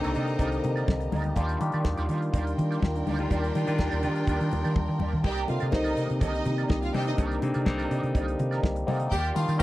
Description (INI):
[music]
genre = disco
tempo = 124 BPM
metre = 4/4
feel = straight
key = C minor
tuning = A4 = 440 Hz
[part]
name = warm symphonic violin section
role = second line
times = 0.0-9.6 s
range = D4 to Bb5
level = -33 LUFS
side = right 1 dB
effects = none
[part]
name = barky tine electric piano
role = accompaniment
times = 0.0-9.6 s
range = D3 to G4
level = -31 LUFS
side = left 3 dB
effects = overdrive, phaser
[part]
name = electric guitar at the edge of break-up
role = accompaniment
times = 0.0-9.6 s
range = Eb4 to D5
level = -37 LUFS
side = right 5 dB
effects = wah, spring reverb
[part]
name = mellow French horn section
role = sustained chords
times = 0.0-9.6 s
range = Eb3 to G4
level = -36 LUFS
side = right 1 dB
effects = none
[part]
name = damped 70s drum kit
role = drums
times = 0.0-9.6 s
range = crash cymbal, hi-hat, kick drum, snare drum, toms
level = -27 LUFS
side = equal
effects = none
[part]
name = hollow-body short-scale fingered electric bass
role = bass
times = 0.1-9.6 s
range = C2 to Eb3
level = -29 LUFS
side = equal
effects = none
[part]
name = congas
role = percussion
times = 0.6-9.6 s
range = none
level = -35 LUFS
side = left 4 dB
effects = none
[part]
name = tambourine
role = percussion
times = 9.1-9.6 s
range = none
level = -44 LUFS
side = left 8 dB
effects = none
[part]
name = clear horn section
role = stabs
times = 9.6 s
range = F4 to Bb4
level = -25 LUFS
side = left 1 dB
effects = none
[sound]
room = little or no reverb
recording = dry, close 1970s-style studio recording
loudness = -24 LUFS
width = side -16 dB against mid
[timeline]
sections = 0.0-5.2 A section; 5.2-9.6 B section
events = drum fill 4.8-5.2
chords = 0.0 Cm9; 1.4 Ebmaj9; 5.2 Cm9; 9.1 Ebmaj9